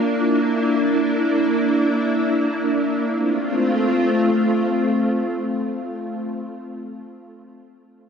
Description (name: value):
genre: dream pop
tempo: free time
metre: none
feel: none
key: F major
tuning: A4 = 437 Hz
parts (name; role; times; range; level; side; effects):
- soft string machine; sustained chords; 0.0-6.2 s; A3 to F4; -18 LUFS; equal; ensemble chorus
room: wet concert hall reverb, RT60 2.0 s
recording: dark, warm production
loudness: -18 LUFS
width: side -6 dB against mid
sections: 0.0-3.1 A section; 3.1-6.2 B section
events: none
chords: 0.0 Bb; 3.1 F